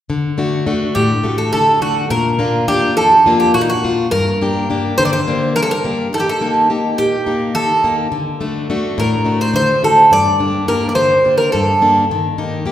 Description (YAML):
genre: greek folk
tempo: 210 BPM (eighths)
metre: 7/8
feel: straight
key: D phrygian dominant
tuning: A4 = 440 Hz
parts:
  - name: picked plugged-in steel-string acoustic guitar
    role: accompaniment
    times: 0.1-12.7 s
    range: F2 to G4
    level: -18 LUFS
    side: left 2 dB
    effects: none
  - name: Greek bouzouki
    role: melody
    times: 0.9-12.0 s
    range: Eb4 to D5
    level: -14 LUFS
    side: right 1 dB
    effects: none
room: wet recital hall reverb, RT60 1.7 s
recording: heard from further back in the room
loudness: -13 LUFS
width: side -11 dB against mid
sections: 0.1-12.7 A section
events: none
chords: 0.1 D; 2.1 Bb; 4.1 Gm; 6.1 Eb; 8.1 D; 10.1 Gm; 12.1 Eb